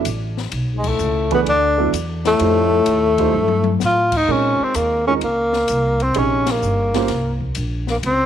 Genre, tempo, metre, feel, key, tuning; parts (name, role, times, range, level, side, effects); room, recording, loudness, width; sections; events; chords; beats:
modal jazz; 128 BPM; 4/4; swing 68% on 8ths; Bb dorian from 4.3 s; A4 = 441 Hz
breathy tenor saxophone; melody; 0.0-8.3 s; G#3 to F4; -18 LUFS; equal
dark trombone; second line; 0.0-4.1 s; G#2 to D3; -23 LUFS; left 11 dB
dark baby grand piano; accompaniment; 0.0-7.1 s; C3 to D5; -23 LUFS; right 13 dB
upright bass; bass; 0.0-8.3 s; G1 to Bb2; -23 LUFS; equal
open jazz drum kit; drums; 0.1-8.2 s; crash cymbal, hi-hat, kick drum, ride cymbal, snare drum, toms; -28 LUFS; left 7 dB
light reverb, small room ambience; 1960s-style stereo with parts hard left and right; -16 LUFS; side -10 dB against mid
0.0-4.3 A section; 4.3-8.3 B section
band accent 0.8, 6.4; drum fill 3.3-3.8
0.0 Bm9; 2.4 F7; 4.3 Bbm69
0.06 | 0.52 0.99 1.46 1.93 | 2.40 2.87 3.34 3.81 | 4.28 4.75 5.22 5.69 | 6.16 6.62 7.09 7.56 | 8.03